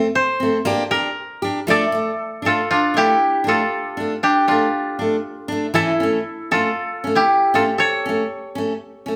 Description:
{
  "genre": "highlife",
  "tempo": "118 BPM",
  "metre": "4/4",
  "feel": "swing 54% on 16ths",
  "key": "D harmonic minor",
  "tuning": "A4 = 444 Hz",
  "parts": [
    { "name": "picked steel-string acoustic guitar", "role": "accompaniment", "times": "0.0-9.2 s", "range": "E3 to G4", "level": "-24 LUFS", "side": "equal", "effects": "none" },
    { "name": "koto", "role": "melody", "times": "0.2-9.2 s", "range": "D4 to D5", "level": "-21 LUFS", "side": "equal", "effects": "none" }
  ],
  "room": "moderate large studio reverb, RT60 0.9 s",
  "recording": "band playing live in one room",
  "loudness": "-19 LUFS",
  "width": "mono",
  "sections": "0.0-1.7 A section; 1.7-9.2 B section",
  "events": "koto solo 0.0-1.7",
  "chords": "0.0 F (rootless); 0.7 Gm; 1.7 Dm; 5.8 A"
}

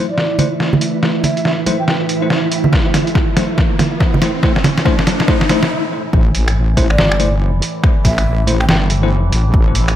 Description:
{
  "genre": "deep dubstep",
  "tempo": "141 BPM",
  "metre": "4/4",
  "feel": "swing 62% on 16ths, half-time",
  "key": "A minor",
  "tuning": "A4 = 440 Hz",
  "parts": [
    { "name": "overtone-sweeping drone", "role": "sustained chords", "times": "0.0-10.0 s", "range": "A2 to E3", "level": "-23 LUFS", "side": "right 3 dB", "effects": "chorus, built-in reverb" },
    { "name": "bell-like tine electric piano", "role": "stabs", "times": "0.0-9.1 s", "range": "A3 to C5", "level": "-23 LUFS", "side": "left 3 dB", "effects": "fast stereo tremolo, dub echo" },
    { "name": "riser", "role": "sound effects", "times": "1.6-5.7 s", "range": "none", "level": "-24 LUFS", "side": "left 2 dB", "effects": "none" },
    { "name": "flickering grainy texture", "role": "texture", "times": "0.1-5.7 s", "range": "E4", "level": "-25 LUFS", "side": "right 3 dB", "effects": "built-in reverb" },
    { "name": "breathy mellow ney", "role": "melody", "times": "0.1-2.0, 6.9-8.8 s", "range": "D5 to G5", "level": "-24 LUFS", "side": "equal", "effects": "low-pass filter, dub echo" },
    { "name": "trip hop sampler-style drum kit", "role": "drums", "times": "0.2-9.9 s", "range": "finger snaps, hi-hat, snare drum", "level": "-18 LUFS", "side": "equal", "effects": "small room ambience" },
    { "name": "congas", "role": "percussion", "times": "0.4-5.2 s", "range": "none", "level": "-19 LUFS", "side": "right 3 dB", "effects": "none" },
    { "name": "electronic kick drum", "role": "drums", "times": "2.7-9.6 s", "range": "none", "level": "-15 LUFS", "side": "equal", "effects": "overdrive, small room ambience" },
    { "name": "wobble bass", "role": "bass", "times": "6.1-10.0 s", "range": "G1 to A1", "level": "-14 LUFS", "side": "equal", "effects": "chorus" }
  ],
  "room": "light reverb, digital ambience",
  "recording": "none",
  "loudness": "-12 LUFS",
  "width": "side -11 dB against mid",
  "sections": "0.0-6.1 A section; 6.1-10.0 B section",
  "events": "build-up 0.0-6.1; drum fill 0.0-5.7; filter sweep on ney 0.0-6.1; riser 1.6-5.7; break 5.7-6.1; drop 6.1-10.0",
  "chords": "0.0 A5"
}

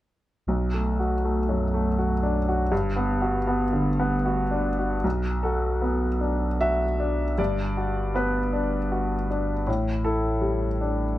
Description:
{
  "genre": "neoclassical piano and strings",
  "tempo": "78 BPM",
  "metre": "3/4",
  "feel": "rubato",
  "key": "B minor",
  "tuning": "A4 = 440 Hz",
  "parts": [
    { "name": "clear baby grand piano", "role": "accompaniment", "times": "0.5-11.2 s", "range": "B1 to E5", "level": "-24 LUFS", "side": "left 1 dB", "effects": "none" },
    { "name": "warm sub bass", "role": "bass", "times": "0.5-11.2 s", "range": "G1 to B1", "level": "-28 LUFS", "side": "equal", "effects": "none" }
  ],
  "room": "light reverb",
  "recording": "none",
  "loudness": "-23 LUFS",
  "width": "side -15 dB against mid",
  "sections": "0.5-5.0 A section; 5.0-11.2 B section",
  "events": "none",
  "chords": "0.5 Bm7; 2.7 Gmaj7; 5.0 Bm7; 7.4 Gmaj7; 9.7 A7sus4"
}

